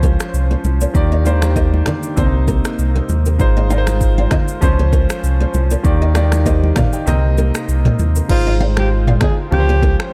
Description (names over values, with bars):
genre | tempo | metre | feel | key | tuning
afrobeats | 98 BPM | 4/4 | swing 55% on 16ths | unclear | A4 = 440 Hz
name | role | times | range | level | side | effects
warm grand piano | accompaniment | 0.0-10.1 s | C3 to G5 | -24 LUFS | equal | none
warm analog pad | sustained chords | 0.0-10.1 s | C3 to C5 | -30 LUFS | equal | chorus
nylon-string guitar | riff | 0.0-9.9 s | G4 to F5 | -28 LUFS | equal | delay
sub bass with octave | bass | 0.0-10.0 s | Ab1 to Eb2 | -17 LUFS | equal | none
afro-pop drum kit | drums | 0.0-10.1 s | crash cymbal, finger snaps, kick drum, rim click, shaker, toms | -20 LUFS | equal | none
congas | percussion | 0.0-10.0 s | none | -28 LUFS | equal | none
breathy alto saxophone | melody | 8.3-10.0 s | F4 to Ab4 | -23 LUFS | equal | none
room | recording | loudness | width
small room ambience | dark, warm production | -15 LUFS | mono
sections
0.0-8.3 A section; 8.3-10.1 B section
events
kick muted 7.1-8.3; hi-hats muted 8.3-10.1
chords
0.0 Dbmaj7; 0.9 Ebmaj7; 2.2 Cm7; 3.4 Ab6; 4.6 Dbmaj7; 5.8 Ebmaj7; 7.1 Cm7; 8.3 Ab6; 9.5 Dbmaj7